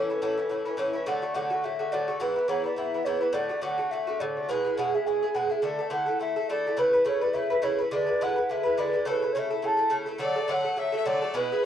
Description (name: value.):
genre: celtic folk, Celtic reel.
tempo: 210 BPM.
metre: 4/4.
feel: swing 57% on 8ths.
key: unclear.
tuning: A4 = 439 Hz.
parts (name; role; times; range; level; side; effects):
mellow hollow baroque flute; melody; 0.0-11.7 s; A4 to A5; -28 LUFS; equal; none.
Irish bouzouki; accompaniment; 0.0-11.6 s; G#2 to B4; -27 LUFS; equal; none.
clear fiddle; second line; 10.2-11.7 s; B4 to F#5; -33 LUFS; left 4 dB; none.
room: moderate studio reverb, RT60 0.6 s.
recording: worn, warbling old tape, cassette tape, warbly pitch drift.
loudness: -24 LUFS.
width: side -9 dB against mid.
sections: 0.0-1.1 A section; 1.1-10.2 B section; 10.2-11.7 B section.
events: none.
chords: 0.0 A; 1.1 D; 2.2 E; 3.4 D; 4.5 E; 5.6 Dsus2; 6.8 Aadd9/C#; 7.9 E7; 9.1 A; 10.2 D.